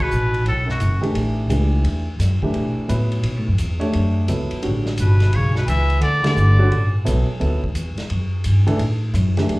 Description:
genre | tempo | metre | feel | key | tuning
modal jazz | 173 BPM | 4/4 | swing 65% on 8ths | B minor | A4 = 440 Hz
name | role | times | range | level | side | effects
trumpet with straight mute | melody | 0.0-1.0, 5.0-6.9 s | F#4 to E5 | -23 LUFS | left 1 dB | slapback echo
clear bass clarinet | second line | 0.0-1.0, 5.0-6.9 s | F#2 to E3 | -23 LUFS | equal | slapback echo
upright bass | bass | 0.0-9.6 s | F#1 to B2 | -18 LUFS | equal | none
vintage drum kit | drums | 0.0-9.6 s | hi-hat, kick drum, ride cymbal, snare drum | -31 LUFS | equal | none
warm grand piano | accompaniment | 1.0-9.6 s | D3 to C#5 | -23 LUFS | equal | slapback echo
room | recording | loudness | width
small room ambience | live gig heard through the venue's PA, club reverb | -17 LUFS | side -21 dB against mid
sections
0.0-9.6 A section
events
band accent 6.2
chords
0.0 B9sus4; 4.6 A9sus4

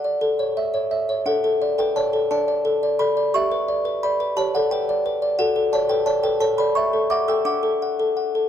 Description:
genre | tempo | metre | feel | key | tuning
classical, lullaby for music box | 58 BPM (dotted quarters) | 6/8 | straight | D major | A4 = 439 Hz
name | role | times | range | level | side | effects
music box | solo | 0.0-8.5 s | D4 to E6 | -19 LUFS | equal | none
room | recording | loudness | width
moderate concert hall reverb, RT60 1.7 s | dark, warm production | -19 LUFS | side -9 dB against mid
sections
0.0-8.5 A section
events
none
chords
0.2 A; 1.3 D5; 3.3 G; 5.4 D/F#; 6.4 A; 7.5 D

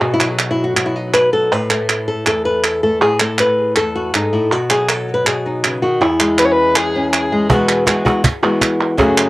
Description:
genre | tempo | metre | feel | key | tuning
flamenco | 160 BPM | 4/4 | straight | E major | A4 = 439 Hz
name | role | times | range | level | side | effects
flamenco guitar | melody | 0.0-9.3 s | E2 to B4 | -15 LUFS | left 1 dB | cassette tape, analog delay
palmas hand claps | percussion | 0.0-9.3 s | none | -17 LUFS | right 3 dB | none
dark violin | second line | 6.4-7.5 s | G#4 to C#5 | -16 LUFS | left 1 dB | cassette tape
cajon | percussion | 7.5-9.2 s | none | -17 LUFS | right 1 dB | none
room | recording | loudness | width
wet booth ambience, RT60 0.2 s | home recording on cassette | -13 LUFS | side -18 dB against mid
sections
0.0-7.5 A section; 7.5-9.3 B section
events
none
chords
0.0 B; 1.5 Asus2; 4.5 B; 6.0 E6; 7.5 Eadd9

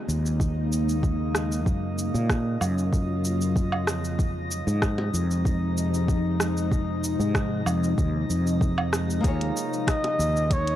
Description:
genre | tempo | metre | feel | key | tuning
sunset chillout | 95 BPM | 4/4 | straight | F minor | A4 = 439 Hz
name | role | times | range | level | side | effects
ethereal airy pad | sustained chords | 0.0-10.8 s | C3 to F4 | -30 LUFS | left 1 dB | ensemble chorus, built-in reverb
drifting glass-harmonics texture | texture | 0.0-10.8 s | Eb5 | -38 LUFS | equal | chorus, built-in reverb, shimmer reverb
mellow fretless electric bass | bass | 0.1-10.8 s | Eb2 to Bb2 | -26 LUFS | equal | none
smooth R&B drum kit | drums | 0.1-10.8 s | hi-hat, rim click, shaker, woodblock | -30 LUFS | right 1 dB | small room ambience
electronic kick drum | drums | 0.4-10.6 s | none | -24 LUFS | equal | small room ambience
bongos | percussion | 5.0-5.1, 10.0-10.2 s | none | -36 LUFS | left 1 dB | none
nylon-string guitar | accompaniment | 9.2-10.8 s | Bb3 to Db5 | -31 LUFS | equal | auto-pan, analog delay, shimmer reverb
warm flugelhorn | melody | 9.9-10.8 s | Db5 to Eb5 | -25 LUFS | equal | none
room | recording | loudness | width
light reverb, small room ambience | dry, gritty hardware recording, transformer saturation | -23 LUFS | side -12 dB against mid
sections
0.0-10.8 A section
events
none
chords
0.0 Eb7sus4; 1.7 Gbmaj7; 3.9 Fm7; 9.2 Eb7sus4

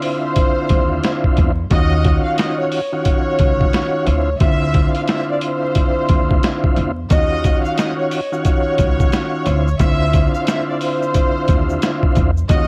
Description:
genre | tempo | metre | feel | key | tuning
hip hop, boom-bap hip-hop | 89 BPM | 4/4 | swing 62% on 16ths | unclear | A4 = 440 Hz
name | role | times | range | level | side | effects
warm studio violin section | melody | 0.0-12.7 s | C5 to F5 | -25 LUFS | equal | digital delay
tonewheel organ | accompaniment | 0.0-12.7 s | D3 to Gb4 | -23 LUFS | equal | chorus vibrato, cassette tape, plate reverb
boom bap sampler-style drum kit | drums | 0.0-12.7 s | hi-hat, kick drum, snare drum | -19 LUFS | equal | none
upright bass | bass | 0.7-12.7 s | Db2 to E2 | -21 LUFS | equal | transformer saturation
egg shaker | percussion | 7.1-12.7 s | none | -45 LUFS | equal | none
room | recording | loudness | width
light reverb | worn, warbling old tape, cassette tape, vinyl crackle, warbly pitch drift | -17 LUFS | mono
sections
0.0-12.7 A section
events
none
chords
0.0 Dm9; 1.7 Ebm9; 4.1 Dm9; 7.1 Ebm9; 9.5 Dm9

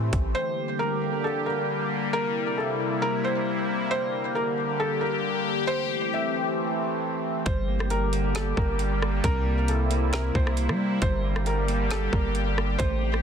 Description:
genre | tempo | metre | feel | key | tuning
hip hop, atmospheric cloud-rap | 135 BPM | 4/4 | half-time | G dorian | A4 = 440 Hz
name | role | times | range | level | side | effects
felt-muted upright piano | melody | 0.0-13.2 s | A4 to E5 | -30 LUFS | right 1 dB | digital delay
sweeping resonant pad | sustained chords | 0.0-13.2 s | C3 to G4 | -28 LUFS | left 2 dB | chorus, sidechain pumping
long sustained 808-style bass | bass | 0.0-0.3, 7.5-13.2 s | G1 to G3 | -26 LUFS | equal | none
wind-like tuned noise texture | texture | 0.0-0.3, 7.7-13.2 s | A3 to D5 | -39 LUFS | equal | built-in reverb
trap drum kit | drums | 0.1-0.2, 7.5-13.2 s | hi-hat, kick drum, rim click, snare drum | -28 LUFS | equal | soft clipping on snare
semi-hollow electric guitar | arpeggios | 7.5-13.2 s | C3 to C4 | -34 LUFS | right 8 dB | digital delay
room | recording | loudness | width
digital ambience | dense, heavily limited modern master | -23 LUFS | side -7 dB against mid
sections
0.4-13.2 A section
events
none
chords
0.4 Gm; 2.1 C7; 3.9 Gm; 5.7 Am7; 7.5 Gm; 9.2 C7; 11.0 Gm

